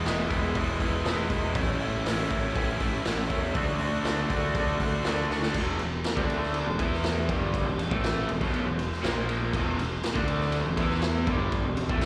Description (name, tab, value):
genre	garage rock duo or trio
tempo	120 BPM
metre	4/4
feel	straight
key	unclear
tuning	A4 = 440 Hz
part	raw garage guitar	riff	0.0-12.1 s	E2 to F#4	-31 LUFS	equal	overdrive, slapback echo
part	growling picked electric bass	bass	0.1-12.1 s	E1 to E2	-34 LUFS	equal	overdrive, tube saturation
part	raw garage drum kit	drums	0.1-12.1 s	crash cymbal, hi-hat, kick drum, ride cymbal, snare drum	-32 LUFS	equal	none
room	light reverb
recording	live gig heard through the venue's PA, recital hall reverb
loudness	-28 LUFS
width	mono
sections	0.0-5.5 A section; 5.5-12.1 B section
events	drum fill 5.3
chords	0.0 E; 1.6 A; 3.6 D; 5.5 E5; 6.2 D5; 6.7 E5; 9.0 A#5; 9.5 E5; 10.1 D5; 10.6 E5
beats	0.06 0.56 1.06 | 1.56 2.06 2.55 3.05 | 3.55 4.05 4.55 5.04 | 5.54 6.04 6.54 7.04 | 7.54 8.03 8.53 9.03 | 9.53 10.02 10.52 11.02 | 11.52 12.02